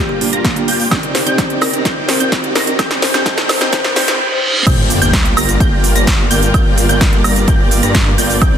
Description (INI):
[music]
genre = EDM, festival progressive house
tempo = 128 BPM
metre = 4/4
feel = straight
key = unclear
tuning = A4 = 443 Hz
[part]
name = kalimba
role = melody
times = 0.0-4.1 s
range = G4 to C5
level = -23 LUFS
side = left 5 dB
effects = dub echo
[part]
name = warm studio string section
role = sustained chords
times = 0.0-8.6 s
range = G2 to D5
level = -24 LUFS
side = left 1 dB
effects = sidechain pumping
[part]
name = wide unison pluck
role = arpeggios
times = 0.0-8.6 s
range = G6 to Bb6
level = -22 LUFS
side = right 1 dB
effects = vintage 12-bit sampler grit, sidechain pumping, dub echo
[part]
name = dense compressed supersaw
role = riff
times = 0.0-8.6 s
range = Bb3 to Bb5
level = -20 LUFS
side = equal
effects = sidechain pumping, low-pass filter, dub echo
[part]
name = riser, reverse cymbal and sub drop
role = sound effects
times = 0.8-6.5 s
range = none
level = -21 LUFS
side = right 1 dB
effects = none
[part]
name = mellow electric guitar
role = accompaniment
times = 0.2-4.0 s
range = Bb3 to D5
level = -24 LUFS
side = right 4 dB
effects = sidechain pumping, dub echo
[part]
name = big-room dance drum kit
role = drums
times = 0.2-8.5 s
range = crash cymbal, hi-hat, shaker, snare drum, woodblock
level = -17 LUFS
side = right 1 dB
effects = none
[part]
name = electronic kick drum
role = drums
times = 0.4-8.5 s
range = none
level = -15 LUFS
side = equal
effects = overdrive
[part]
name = wide detuned saw bass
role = bass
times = 4.7-8.6 s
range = G1 to G2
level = -18 LUFS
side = equal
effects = chorus, sidechain pumping
[sound]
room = moderate recital hall reverb, RT60 1.6 s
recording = dense, heavily limited modern master, high-pass filter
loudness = -11 LUFS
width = side -9 dB against mid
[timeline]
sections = 0.0-4.7 A section; 4.7-8.6 B section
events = build-up 0.0-4.7; drum fill 0.0-4.2; filter sweep on supersaw synth 0.0-4.7; filter sweep 0.0-4.7; riser 0.8-4.2; reverse cymbal 3.7-4.7; drop 4.7-8.6; impact 4.7-6.5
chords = 0.0 Gm7; 0.9 Cmadd9; 4.7 Gm7